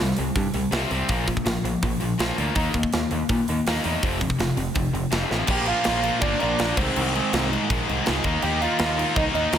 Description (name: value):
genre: punk rock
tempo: 164 BPM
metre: 4/4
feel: straight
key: unclear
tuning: A4 = 441 Hz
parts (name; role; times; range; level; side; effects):
- distorted electric guitar; riff; 0.0-9.6 s; F2 to Eb4; -25 LUFS; left 2 dB; distortion
- growling picked electric bass; bass; 0.0-9.6 s; F1 to Bb2; -28 LUFS; equal; overdrive
- tight metal drum kit; drums; 0.0-9.6 s; crash cymbal, hi-hat, kick drum, snare drum; -26 LUFS; right 1 dB; none
- crunchy overdriven guitar; melody; 5.5-9.6 s; C4 to G5; -26 LUFS; right 4 dB; none
- high-gain distorted guitar; riff; 5.5-9.6 s; Ab2 to Eb4; -29 LUFS; left 1 dB; distortion
room: light reverb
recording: none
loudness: -21 LUFS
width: side -9 dB against mid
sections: 0.0-5.5 A section; 5.5-9.6 B section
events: drum fill 5.3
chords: 0.0 C5; 1.1 Bb5; 2.6 Eb5; 4.0 F5; 5.5 Bb; 6.8 Ab/C; 8.2 Eb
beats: 0.36 0.73 | 1.09 1.46 1.82 2.19 | 2.56 2.92 3.29 3.65 | 4.02 4.39 4.75 5.12 | 5.49 5.85 6.22 6.59 | 6.96 7.32 7.69 8.06 | 8.43 8.79 9.16 9.53